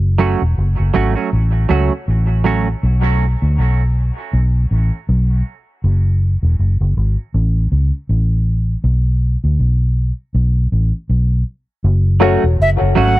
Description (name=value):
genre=reggae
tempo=80 BPM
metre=4/4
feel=swing 57% on 16ths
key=F# minor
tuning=A4 = 440 Hz
part: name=vintage muted fingered electric bass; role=bass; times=0.0-13.2 s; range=E1 to D2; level=-14 LUFS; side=equal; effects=none
part: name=semi-hollow electric guitar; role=accompaniment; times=0.2-2.7, 12.2-13.2 s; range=F#3 to F#4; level=-19 LUFS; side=right 6 dB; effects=analog chorus, dub echo
part: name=dark upright piano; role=stabs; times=12.2-12.4 s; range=F#4 to F#5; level=-17 LUFS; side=left 7 dB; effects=dub echo
part: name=breathy bright concert flute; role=melody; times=12.6-13.2 s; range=E5 to F#5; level=-16 LUFS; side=right 1 dB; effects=none
room=small room ambience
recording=dry, close 1970s-style studio recording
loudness=-14 LUFS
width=side -17 dB against mid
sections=0.0-11.8 A section; 11.8-13.2 B section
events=break 0.0-11.8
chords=0.0 F#m; 2.8 N.C.; 5.8 F#m; 8.8 N.C.; 11.8 F#m